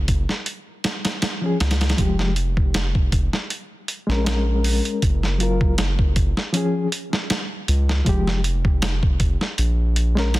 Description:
trip hop; 79 BPM; 4/4; swing 54% on 16ths; A4 = 440 Hz
soft dub sub bass; bass; 0.0-10.4 s; F1 to Db2; -21 LUFS; equal
dusty soul sampler-style drum kit; drums; 0.1-10.4 s; hi-hat, kick drum, snare drum; -22 LUFS; equal
reed electric piano; accompaniment; 1.4-10.3 s; F3 to Bb4; -25 LUFS; left 2 dB; tremolo, vintage 12-bit sampler grit, tape echo
digital ambience; dense, heavily limited modern master; -19 LUFS; side -18 dB against mid
0.0-10.4 A section
0.5 Db; 2.0 Fmadd9; 3.5 Bbm7; 5.0 Gbmaj7; 6.5 Db; 8.1 Fmadd9; 9.6 Bbm7

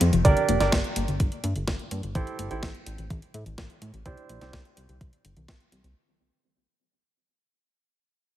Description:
italo disco; 126 BPM; 4/4; straight; A4 = 435 Hz
warbly dusty pluck; arpeggios; 0.0-5.9 s; D3 to C4; -30 LUFS; left 3 dB; chorus, ping-pong delay
chorused synth bass; bass; 0.0-5.9 s; F1 to A2; -28 LUFS; equal
clean 12-bit digital drum machine; drums; 0.0-5.9 s; hi-hat, snare drum; -31 LUFS; equal; overdrive, studio reverb
warm concert grand piano; stabs; 0.2-4.6 s; D4 to D5; -27 LUFS; right 4 dB; low-pass filter
electronic kick drum; drums; 0.2-5.6 s; -25 LUFS; equal; overdrive, studio reverb
light reverb; heavily compressed radio sound, multiband compression; -23 LUFS; side -13 dB against mid
0.0-6.0 A section
fade-out 0.0-6.0; filter sweep on grand piano 0.0-6.0
0.2 Gm; 2.2 Am7; 4.1 Cadd9

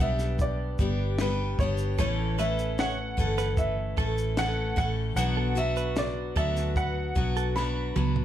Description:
acoustic pop; 75 BPM; 4/4; straight; B minor; A4 = 439 Hz
warm upright piano; melody; 0.0-8.1 s; B4 to B5; -32 LUFS; right 1 dB; plate reverb, ping-pong delay
picked steel-string acoustic guitar; accompaniment; 0.0-8.2 s; A2 to A4; -31 LUFS; left 3 dB
vintage muted fingered electric bass; bass; 0.0-8.2 s; G1 to D2; -29 LUFS; equal
compact cocktail drum kit; drums; 0.0-8.2 s; kick drum, shaker, snare drum, toms; -30 LUFS; equal
direct-recorded clean electric guitar; arpeggios; 2.0-7.6 s; A4 to C#5; -37 LUFS; right 9 dB; harmonic tremolo, ping-pong delay
light reverb; dark, warm production; -25 LUFS; side -11 dB against mid
0.0-8.2 A section
drum fill 7.6-8.2
0.0 G; 2.0 A; 5.2 Bm

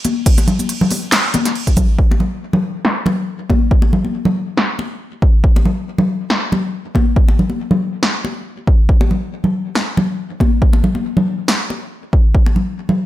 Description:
dubstep; 139 BPM; 4/4; swing 54% on 16ths, half-time
deep house drum kit; drums; 0.0-11.6 s; crash cymbal, handclaps, hi-hat, shaker, snare drum; -18 LUFS; equal; low-pass filter on hats, low-pass filter on perc, low-pass filter on cymbals, low-pass filter on snare, low-pass filter on room
congas; percussion; 0.0-13.0 s; -18 LUFS; left 1 dB; dub echo
electronic kick drum; drums; 0.3-12.4 s; -12 LUFS; equal
light reverb, digital ambience; -14 LUFS; side -14 dB against mid
0.0-2.0 A section; 2.0-13.1 B section
drop 0.0-2.0; filter sweep on drum 2.0-13.1

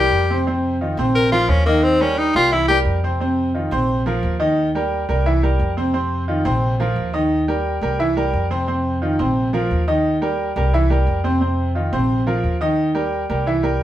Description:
latin; 175 BPM; 4/4; straight; A4 = 440 Hz
clear tenor saxophone; melody; 0.0-2.8 s; Bb3 to Bb4; -17 LUFS; left 2 dB
bright baby grand piano; accompaniment; 0.0-13.8 s; C3 to E5; -19 LUFS; right 1 dB
upright bass; bass; 0.0-13.8 s; Bb1 to F2; -22 LUFS; equal
wet studio reverb, RT60 0.5 s; band playing live in one room; -16 LUFS; side -12 dB against mid
0.0-3.2 A section; 3.2-13.8 B section
tenor saxophone solo 0.0-3.2
0.5 Bbsus2; 1.8 Eb; 2.5 C7; 3.2 Bbsus2; 4.6 Eb; 5.3 C7; 5.9 Bbsus2; 7.3 Eb; 8.0 C7; 8.7 Bbsus2; 10.1 Eb; 10.7 C7; 11.4 Bbsus2; 12.8 Eb

